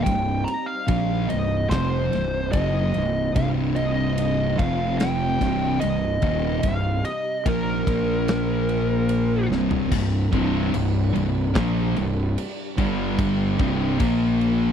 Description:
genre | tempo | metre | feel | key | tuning
stoner and doom metal | 73 BPM | 4/4 | straight | C minor | A4 = 439 Hz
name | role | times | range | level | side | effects
fuzz lead guitar | melody | 0.0-9.5 s | Bb4 to Bb5 | -26 LUFS | equal | wah, distortion, slapback echo
soft string machine | sustained chords | 0.0-14.7 s | C3 to D5 | -35 LUFS | left 1 dB | none
thick fuzz guitar | riff | 0.0-14.7 s | C2 to Bb3 | -26 LUFS | left 9 dB | distortion
thick fuzz guitar | riff | 0.0-14.7 s | C2 to Bb3 | -25 LUFS | right 8 dB | distortion
fuzz fingered electric bass | bass | 0.0-14.7 s | C1 to Bb1 | -27 LUFS | equal | overdrive
big rock drum kit | drums | 0.1-14.6 s | crash cymbal, kick drum, ride cymbal, snare drum, toms | -28 LUFS | equal | none
scooped high-gain guitar | riff | 9.9-14.7 s | C2 to Bb3 | -29 LUFS | equal | distortion
room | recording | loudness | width
small room ambience | dry, close 1970s-style studio recording | -20 LUFS | side -8 dB against mid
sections
0.0-9.9 A section; 9.9-14.7 B section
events
drum fill 9.5-9.9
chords
0.0 Cm; 4.6 F5; 5.4 Cm; 7.9 Bb5; 9.5 C5; 12.8 G5; 13.6 C5; 14.0 Bb5

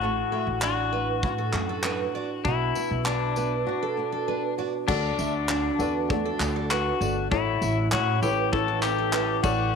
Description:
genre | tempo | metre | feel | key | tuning
acoustic pop | 99 BPM | 4/4 | straight | D major | A4 = 439 Hz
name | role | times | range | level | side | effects
pedal steel guitar | second line | 0.0-9.8 s | D4 to A4 | -28 LUFS | left 10 dB | tape echo
flamenco guitar | accompaniment | 0.0-9.8 s | A2 to F#4 | -30 LUFS | right 2 dB | double-tracked left and right
upright bass | bass | 0.0-9.8 s | G1 to A2 | -30 LUFS | right 1 dB | none
picked steel-string acoustic guitar | arpeggios | 0.3-9.6 s | A4 to E5 | -33 LUFS | right 11 dB | none
modern studio drum kit | drums | 0.6-9.6 s | crash cymbal, handclaps, kick drum, tambourine | -31 LUFS | right 1 dB | none
dark upright piano | accompaniment | 4.9-9.8 s | E4 to D5 | -33 LUFS | left 8 dB | none
room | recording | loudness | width
light reverb, small room ambience | 1960s-style stereo with parts hard left and right | -23 LUFS | side -6 dB against mid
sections
0.0-4.9 A section; 4.9-9.8 B section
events
break 3.7-4.9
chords
0.0 D/A; 2.5 Bm; 4.9 D; 7.3 A

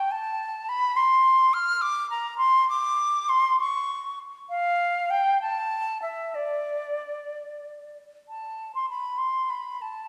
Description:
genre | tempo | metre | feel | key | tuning
classical, baroque-style fantasia for unaccompanied flute | 61-70 BPM (dotted quarters) | 6/8 | rubato | D minor | A4 = 442 Hz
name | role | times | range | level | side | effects
silver concert flute | solo | 0.0-10.1 s | D5 to F6 | -26 LUFS | equal | none
room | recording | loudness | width
wet recital hall reverb, RT60 1.7 s | heard from further back in the room | -25 LUFS | mono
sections
0.0-8.3 A section; 8.3-10.1 A section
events
none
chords
none

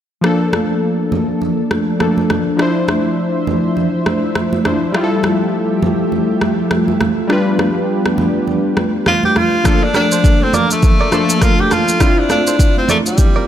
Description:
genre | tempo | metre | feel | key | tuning
afrobeats | 102 BPM | 4/4 | swing 58% on 16ths | unclear | A4 = 439 Hz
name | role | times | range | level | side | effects
warm analog keys | accompaniment | 0.2-13.5 s | F3 to C5 | -18 LUFS | left 2 dB | chorus
lush unison pad | sustained chords | 0.2-9.6 s | F3 to E5 | -20 LUFS | left 1 dB | chorus
afro-pop drum kit | drums | 0.2-13.3 s | kick drum, rim click, shaker | -17 LUFS | equal | none
congas | percussion | 0.5-13.3 s | none | -20 LUFS | right 4 dB | none
clear tenor saxophone | melody | 9.1-13.5 s | G3 to G4 | -16 LUFS | equal | none
direct-recorded clean electric guitar | riff | 10.0-13.4 s | F4 to D5 | -23 LUFS | right 6 dB | none
room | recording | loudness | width
light reverb, digital ambience | none | -12 LUFS | side -10 dB against mid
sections
0.2-9.7 A section; 9.7-13.5 B section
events
none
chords
0.2 Bbmaj7; 2.6 Dm9; 4.9 Fmaj9; 7.3 G7; 9.7 Bbmaj7; 12.0 Dm9

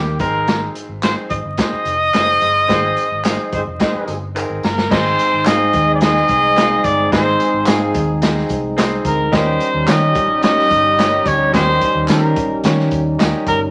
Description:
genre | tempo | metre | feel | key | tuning
uptempo 1960s-style soul | 109 BPM | 4/4 | straight | unclear | A4 = 437 Hz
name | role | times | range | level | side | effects
warm trumpet | melody | 0.0-13.6 s | G4 to Eb5 | -19 LUFS | equal | none
clear grand piano | accompaniment | 0.0-13.5 s | Ab2 to F5 | -26 LUFS | equal | none
vintage muted fingered electric bass | bass | 0.0-13.7 s | F1 to Eb3 | -25 LUFS | equal | none
crunchy breakbeat drum kit | drums | 0.2-13.6 s | crash cymbal, hi-hat, kick drum, snare drum | -22 LUFS | equal | none
tambourine and handclaps | percussion | 0.2-13.6 s | none | -32 LUFS | equal | none
mellow horn section | second line | 2.7-13.4 s | G3 to C5 | -27 LUFS | equal | none
percussive tonewheel organ | sustained chords | 4.9-13.7 s | G3 to Eb4 | -25 LUFS | equal | overdrive, stopped rotary speaker
room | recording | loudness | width
wet studio reverb, RT60 0.8 s | vinyl crackle, nothing above 10.8 kHz | -16 LUFS | mono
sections
0.0-4.9 A section; 4.9-13.7 B section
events
band accent 2.7-4.9; drum fill 4.4-4.9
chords
0.2 Ab; 9.3 Eb7

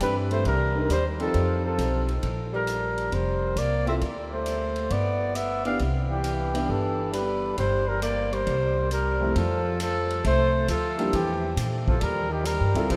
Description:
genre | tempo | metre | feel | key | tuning
jazz, small-group swing and bop | 135 BPM | 4/4 | swing 68% on 8ths | C major, F major from 9.4 s | A4 = 440 Hz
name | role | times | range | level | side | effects
mellow trumpet | melody | 0.0-13.0 s | G4 to F5 | -30 LUFS | equal | none
breathy tenor saxophone | second line | 0.0-13.0 s | Eb3 to D4 | -33 LUFS | equal | none
warm concert grand piano | accompaniment | 0.0-12.9 s | F2 to B4 | -35 LUFS | equal | none
upright bass | bass | 0.0-13.0 s | F1 to Bb2 | -30 LUFS | equal | none
swinging big-band drum kit | drums | 0.0-13.0 s | hi-hat, kick drum, ride cymbal | -37 LUFS | equal | none
room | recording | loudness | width
wet cathedral reverb, RT60 5.5 s | in a vast, echoing space | -26 LUFS | mono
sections
0.0-9.4 A section; 9.4-13.0 B section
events
none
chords
0.5 Cm7; 1.3 F7; 2.2 Bbsus2; 4.0 D5; 4.9 G; 5.8 Cmaj7; 7.6 Gmadd11; 8.5 C7; 9.4 Fadd9; 11.1 Edim; 12.0 Eb7#11

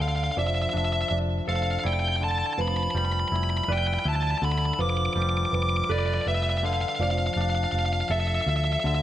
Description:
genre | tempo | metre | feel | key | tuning
rock | 54 BPM (dotted quarters) | 6/8 | straight | unclear | A4 = 441 Hz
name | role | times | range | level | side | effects
smooth overdriven lead guitar | melody | 0.0-9.0 s | D5 to D6 | -27 LUFS | equal | digital delay
twangy electric guitar | arpeggios | 0.0-9.0 s | D3 to B4 | -32 LUFS | left 3 dB | spring reverb, digital delay
hollow-body short-scale picked electric bass | bass | 0.0-9.0 s | F1 to D2 | -27 LUFS | equal | none
felt-muted upright piano | arpeggios | 0.4-8.8 s | A4 to E5 | -35 LUFS | right 7 dB | digital delay
room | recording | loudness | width
light reverb, digital ambience | none | -23 LUFS | side -12 dB against mid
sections
0.0-9.0 A section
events
none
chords
0.0 Dmadd9/F; 2.6 Em7/F; 7.0 Dmadd9/F

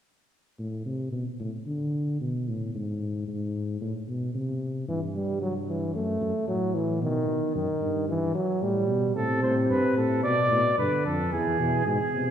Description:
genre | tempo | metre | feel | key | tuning
classical, imitative canzona for brass ensemble | 112 BPM | 4/4 | straight | A minor | A4 = 441 Hz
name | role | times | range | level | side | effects
mellow tuba | bass | 0.6-12.3 s | E2 to D3 | -30 LUFS | left 1 dB | none
mellow trombone | accompaniment | 4.9-12.3 s | B2 to A3 | -26 LUFS | equal | none
mellow flugelhorn | second line | 9.2-12.3 s | G#4 to D5 | -25 LUFS | right 1 dB | none
room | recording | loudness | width
wet concert hall reverb, RT60 2.1 s | recorded in a church or concert hall | -25 LUFS | side -9 dB against mid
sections
0.6-12.3 A section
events
none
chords
0.6 Am; 1.7 Asus24; 2.7 N.C.; 4.9 Em/G; 6.0 F#m7; 7.0 B; 8.1 Em/G; 9.2 Am; 10.2 Bdim; 11.3 E

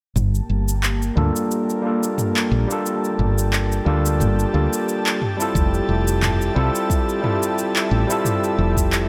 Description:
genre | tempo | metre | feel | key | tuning
sunset chillout | 89 BPM | 4/4 | swing 54% on 16ths | G dorian | A4 = 440 Hz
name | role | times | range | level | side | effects
airy breathy pad | sustained chords | 0.2-9.1 s | Bb3 to A5 | -28 LUFS | equal | chorus
woody fretless electric bass | bass | 0.2-9.1 s | F1 to D2 | -22 LUFS | equal | none
deep house drum kit | drums | 0.2-9.1 s | handclaps, shaker, toms | -27 LUFS | equal | none
overdriven tine electric piano | accompaniment | 1.2-9.1 s | G3 to A4 | -25 LUFS | equal | low-pass filter, digital delay
electronic kick drum | drums | 5.6-8.9 s | none | -23 LUFS | equal | none
room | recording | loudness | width
moderate scoring stage reverb, RT60 1.6 s, digital ambience | none | -20 LUFS | mono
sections
0.2-9.1 A section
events
filter sweep on tine electric piano 0.2-9.1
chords
0.2 Gm9; 5.2 Fmaj9

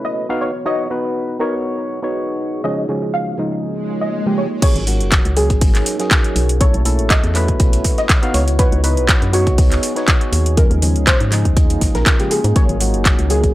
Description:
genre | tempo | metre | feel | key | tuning
deep house | 121 BPM | 4/4 | swing 54% on 16ths | G# dorian | A4 = 442 Hz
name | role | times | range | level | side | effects
soft round pluck | melody | 0.0-13.5 s | F#4 to E#5 | -23 LUFS | equal | ensemble chorus, analog delay
deep dark ambient pad | sustained chords | 0.0-13.5 s | A#3 to C#5 | -26 LUFS | right 1 dB | chorus, built-in reverb, sidechain pumping
percussive organ stab | stabs | 0.0-13.5 s | C#3 to E#5 | -22 LUFS | equal | chorus, sidechain pumping, analog delay
swell | sound effects | 3.8-4.6 s | none | -22 LUFS | right 2 dB | none
breakbeat sampler-style drum kit | drums | 4.6-13.5 s | hi-hat, snare drum | -31 LUFS | left 1 dB | none
electronic kick drum | drums | 4.6-13.5 s | none | -14 LUFS | equal | none
house drum kit | drums | 4.6-13.5 s | crash cymbal, handclaps, hi-hat | -20 LUFS | equal | none
organ-like FM bass | bass | 4.8-13.5 s | F#1 to G#2 | -17 LUFS | equal | sidechain pumping
room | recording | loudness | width
little or no reverb | dry, gritty hardware recording | -14 LUFS | side -16 dB against mid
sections
0.0-4.6 A section; 4.6-13.5 B section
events
swell 3.8-4.6; drop 4.6-13.5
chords
0.4 C#9sus4; 2.6 D#9sus4; 4.6 G#9sus4; 6.6 B9sus4; 8.3 C#9sus4; 10.6 D#9sus4; 12.6 G#9sus4

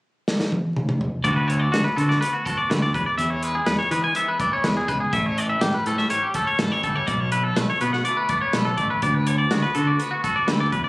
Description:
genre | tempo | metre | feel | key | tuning
math rock and midwest emo | 123 BPM | 4/4 | straight | D major | A4 = 436 Hz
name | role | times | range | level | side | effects
loose indie drum kit | drums | 0.3-10.8 s | hi-hat, kick drum, snare drum, toms | -26 LUFS | equal | none
twangy electric guitar | accompaniment | 1.2-10.9 s | D2 to F#4 | -29 LUFS | right 2 dB | none
twangy electric guitar | arpeggios | 1.2-10.9 s | F#4 to G#5 | -23 LUFS | left 1 dB | none
modern bright picked electric bass | bass | 1.2-10.8 s | G1 to E3 | -23 LUFS | equal | none
room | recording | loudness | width
light reverb, small room ambience | recorded on a phone in the room, club reverb, vinyl crackle, compression | -20 LUFS | side -21 dB against mid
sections
0.0-1.2 A section; 1.2-10.9 B section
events
drum fill 0.3-1.2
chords
0.0 N.C.; 1.2 D6; 2.9 E; 5.1 A7; 7.1 Bm7; 9.0 D6

